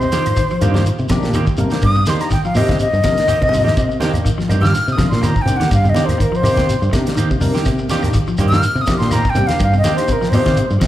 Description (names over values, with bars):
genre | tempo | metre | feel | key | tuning
afrobeat | 124 BPM | 4/4 | swing 54% on 16ths | C minor | A4 = 440 Hz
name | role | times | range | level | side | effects
breathy bright concert flute | melody | 0.0-10.7 s | Bb4 to F6 | -19 LUFS | left 1 dB | slapback echo, tape echo
clean electric guitar | arpeggios | 0.0-10.9 s | C3 to G3 | -25 LUFS | left 4 dB | tape echo
semi-hollow electric guitar | stabs | 0.0-10.9 s | Eb3 to G4 | -25 LUFS | right 5 dB | wide subtle chorus, slapback echo
fingered electric bass | bass | 0.0-10.9 s | G2 to C3 | -17 LUFS | equal | none
congas | percussion | 0.0-10.9 s | none | -22 LUFS | right 1 dB | none
shekere | percussion | 0.0-10.9 s | none | -26 LUFS | equal | none
barky tine electric piano | accompaniment | 0.1-10.9 s | Bb3 to G5 | -26 LUFS | left 2 dB | overdrive, phaser, slapback echo
damped 70s drum kit | drums | 0.1-10.9 s | hi-hat, kick drum, snare drum | -21 LUFS | equal | none
claves | percussion | 0.3-10.9 s | none | -39 LUFS | equal | none
room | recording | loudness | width
light reverb, studio reverb | live gig heard through the venue's PA, club reverb | -13 LUFS | side -13 dB against mid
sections
0.0-10.9 A section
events
flute solo 0.0-10.9; drum fill 3.4-3.8; tine electric piano fill 10.6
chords
0.0 Cm7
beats
0.37 0.86 1.34 | 1.83 2.32 2.80 3.29 | 3.77 4.26 4.75 5.23 | 5.72 6.21 6.69 7.18 | 7.66 8.15 8.63 9.12 | 9.60 10.09 10.57